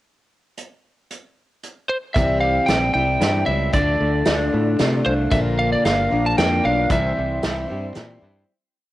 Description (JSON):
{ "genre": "folk rock and heartland rock", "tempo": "114 BPM", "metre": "3/4", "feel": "straight", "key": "unclear", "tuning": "A4 = 440 Hz", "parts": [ { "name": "unplugged drum kit", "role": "drums", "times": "0.6-8.1 s", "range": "hi-hat, kick drum, snare drum", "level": "-22 LUFS", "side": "right 1 dB", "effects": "none" }, { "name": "lightly driven lead guitar", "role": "melody", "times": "1.9-7.9 s", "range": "C5 to A5", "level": "-22 LUFS", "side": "right 1 dB", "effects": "cassette tape" }, { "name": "picked steel-string acoustic guitar", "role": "accompaniment", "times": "2.2-8.5 s", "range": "Bb2 to F4", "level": "-24 LUFS", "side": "left 3 dB", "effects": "cassette tape" }, { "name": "electric guitar through a small old amp", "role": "riff", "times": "2.2-8.5 s", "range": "Bb2 to F4", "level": "-27 LUFS", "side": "right 1 dB", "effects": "lush chorus, cassette tape" }, { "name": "modern bright fingered electric bass", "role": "bass", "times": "2.2-8.4 s", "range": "G1 to C3", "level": "-24 LUFS", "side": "equal", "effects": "none" }, { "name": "mellow tonewheel organ", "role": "sustained chords", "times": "5.3-8.5 s", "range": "D4 to C6", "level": "-34 LUFS", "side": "equal", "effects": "slow rotary speaker, cassette tape" } ], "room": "small room reverb", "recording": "home recording on cassette", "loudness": "-17 LUFS", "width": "side -16 dB against mid", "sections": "0.6-2.2 pickup bar; 2.2-8.5 pre-chorus", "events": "fade-out 6.9-8.5", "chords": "0.6 N.C.; 2.2 C; 3.7 Dm; 5.3 Bb; 6.9 C", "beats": "| 0.58 1.11 1.64 | 2.16 2.69 3.21 | 3.74 4.27 4.80 | 5.32 5.85 6.38 | 6.91 7.43 7.96" }